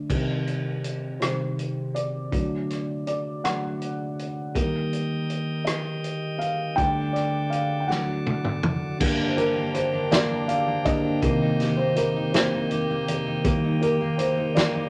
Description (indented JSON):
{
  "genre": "six-eight pop ballad",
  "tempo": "54 BPM (dotted quarters)",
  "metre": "6/8",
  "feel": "straight",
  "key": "G minor",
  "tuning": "A4 = 440 Hz",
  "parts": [
    { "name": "felt-muted upright piano", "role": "accompaniment", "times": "0.0-14.9 s", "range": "G2 to G5", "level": "-28 LUFS", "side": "equal", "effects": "none" },
    { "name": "loose indie drum kit", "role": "drums", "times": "0.1-14.7 s", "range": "crash cymbal, hi-hat, kick drum, rim click, snare drum, toms", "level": "-30 LUFS", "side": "equal", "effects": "none" },
    { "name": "tonewheel organ", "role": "sustained chords", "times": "4.5-14.9 s", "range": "D3 to Eb5", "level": "-33 LUFS", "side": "equal", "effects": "overdrive, stopped rotary speaker" },
    { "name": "fingerpicked steel-string acoustic guitar", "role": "arpeggios", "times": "9.0-14.9 s", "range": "Bb3 to G4", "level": "-33 LUFS", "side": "equal", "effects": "none" }
  ],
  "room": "wet studio reverb, RT60 0.8 s",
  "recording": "none",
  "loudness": "-25 LUFS",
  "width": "mono",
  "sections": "0.1-9.0 A section; 9.0-14.9 B section",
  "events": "felt piano solo 0.1-9.0, 9.0-14.9; drum fill 7.9-9.0",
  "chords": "0.1 Cm; 2.3 D; 4.6 Eb; 6.8 Dsus4; 7.9 D; 9.0 Gm; 11.2 Cm7; 13.4 Eb",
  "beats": "| 0.10 1.21 | 2.33 3.44 | 4.55 5.67 | 6.78 7.89 | 9.00 10.12 | 11.23 12.34 | 13.45 14.56"
}